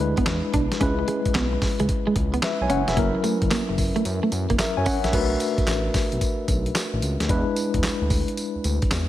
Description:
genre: R&B, new jack swing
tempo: 111 BPM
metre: 4/4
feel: swing 66% on 16ths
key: B dorian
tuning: A4 = 440 Hz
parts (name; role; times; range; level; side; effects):
- mellow tine electric piano; accompaniment; 0.0-9.1 s; F#3 to G#5; -25 LUFS; left 2 dB; medium stereo tremolo
- electric guitar at the edge of break-up; riff; 0.0-5.0 s; G#3 to D4; -27 LUFS; right 4 dB; analog chorus
- smooth synth bass; bass; 0.0-9.1 s; E1 to F#2; -26 LUFS; equal; none
- dusty soul sampler-style drum kit; drums; 0.2-9.1 s; crash cymbal, handclaps, hi-hat, kick drum, snare drum, tambourine; -25 LUFS; equal; none
room: light reverb, digital ambience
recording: none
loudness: -21 LUFS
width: side -13 dB against mid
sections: 0.0-5.1 A section; 5.1-9.1 B section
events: none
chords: 0.0 E7; 0.8 C#m7; 3.0 F#7; 5.1 Bm7; 7.3 E7

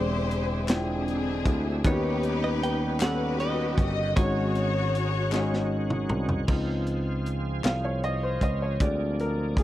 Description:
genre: slow gospel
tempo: 52 BPM (dotted quarters)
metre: 6/8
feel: straight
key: unclear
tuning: A4 = 436 Hz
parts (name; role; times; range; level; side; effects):
- direct-recorded clean electric guitar; melody; 0.0-5.7 s; Db5 to G5; -34 LUFS; right 4 dB; none
- rich symphonic string section; melody; 0.0-6.1 s; B#3 to Eb5; -31 LUFS; left 4 dB; none
- warm grand piano; accompaniment; 0.0-9.6 s; Ab2 to G5; -31 LUFS; left 2 dB; none
- bright tonewheel organ; sustained chords; 0.0-9.6 s; D3 to Ab4; -36 LUFS; right 5 dB; overdrive, chorus vibrato, slow rotary speaker
- picked electric bass; bass; 0.0-9.6 s; E1 to Eb2; -29 LUFS; equal; none
- tight funk drum kit; drums; 0.3-9.6 s; crash cymbal, hi-hat, kick drum, snare drum, toms; -26 LUFS; equal; none
- group handclap; percussion; 0.7-8.0 s; none; -36 LUFS; left 8 dB; none
room: little or no reverb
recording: dry, close 1970s-style studio recording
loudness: -24 LUFS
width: side -14 dB against mid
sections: 0.0-6.5 A section; 6.5-9.6 B section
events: drum fill 5.3-6.5; grand piano solo 6.5-9.6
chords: 0.0 E7alt; 1.8 Eb7alt; 4.2 Ab7sus4; 6.5 Dbmaj7; 8.8 Bb7/D

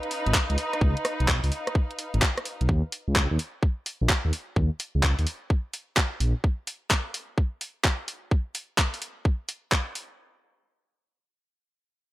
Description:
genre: UK garage, two-step garage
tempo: 128 BPM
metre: 4/4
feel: swing 66% on 16ths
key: unclear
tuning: A4 = 440 Hz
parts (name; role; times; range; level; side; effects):
- garage drum kit; drums; 0.0-10.1 s; handclaps, hi-hat, rim click; -26 LUFS; equal; overdrive
- bright studio string section; texture; 0.0-2.7 s; Db4 to F5; -32 LUFS; right 1 dB; sidechain pumping
- dark detuned saw bass; bass; 0.3-6.3 s; Ab1 to Eb2; -24 LUFS; equal; none
- electronic kick drum; drums; 0.3-9.8 s; none; -24 LUFS; equal; overdrive
room: digital ambience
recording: dry, gritty hardware recording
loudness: -24 LUFS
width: side -17 dB against mid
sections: 0.0-10.2 A section; 10.2-12.1 B section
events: none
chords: 0.0 Db9; 2.7 Eb5; 6.4 N.C.

